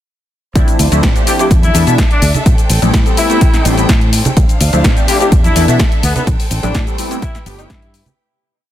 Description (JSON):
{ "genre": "filtered disco house", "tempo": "126 BPM", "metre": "4/4", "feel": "straight", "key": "A minor", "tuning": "A4 = 440 Hz", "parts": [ { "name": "funky polysynth comp", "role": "accompaniment", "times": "0.6-7.7 s", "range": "E3 to A4", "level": "-18 LUFS", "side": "left 1 dB", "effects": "chorus, phaser, sidechain pumping" }, { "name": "rich chamber violin section", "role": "sustained chords", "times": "0.6-8.2 s", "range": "C4 to G5", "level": "-23 LUFS", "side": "right 1 dB", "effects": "sidechain pumping" }, { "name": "fingered electric bass", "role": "bass", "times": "0.6-8.0 s", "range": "G1 to B2", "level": "-15 LUFS", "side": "equal", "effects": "sidechain pumping" }, { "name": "electronic kick drum", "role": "drums", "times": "0.6-7.8 s", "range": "none", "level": "-13 LUFS", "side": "equal", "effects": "none" }, { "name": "house drum kit", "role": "drums", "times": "0.6-8.2 s", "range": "hi-hat, shaker, snare drum", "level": "-19 LUFS", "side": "left 2 dB", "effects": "sidechain pumping on hats, sidechain pumping on perc" }, { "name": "tambourine and congas", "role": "percussion", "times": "0.6-8.2 s", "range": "none", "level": "-20 LUFS", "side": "right 2 dB", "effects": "sidechain pumping on perc" }, { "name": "mellow horn section", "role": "melody", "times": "1.3-8.1 s", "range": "B3 to G4", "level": "-18 LUFS", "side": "left 2 dB", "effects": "sidechain pumping, tape echo" } ], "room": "light reverb, small room ambience", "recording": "dense, heavily limited modern master", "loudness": "-9 LUFS", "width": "side -12 dB against mid", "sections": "0.6-8.2 drop", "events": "drop 0.6-8.2; fade-out 5.6-8.2", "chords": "0.6 Dm7; 1.5 E7sus4; 2.5 Am7; 4.4 Dm7; 5.3 E7sus4; 6.3 Am7; 7.2 G7" }